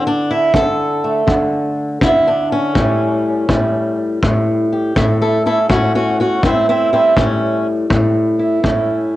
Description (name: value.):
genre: acoustic country blues, solo or duo.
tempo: 82 BPM.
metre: 4/4.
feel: swing 66% on 8ths.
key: A mixolydian.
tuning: A4 = 440 Hz.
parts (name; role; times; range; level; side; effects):
fingerpicked swing-style acoustic guitar; melody; 0.0-9.2 s; A2 to A4; -14 LUFS; equal; cassette tape, plate reverb.
kick drum; drums; 0.5-8.9 s; none; -19 LUFS; equal; cassette tape.
room: moderate small room reverb, RT60 0.5 s.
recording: home recording on cassette.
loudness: -13 LUFS.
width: side -15 dB against mid.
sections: 0.0-8.6 A section.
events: steel-string acoustic guitar solo 0.0-8.6.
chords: 0.0 D5; 2.8 A7.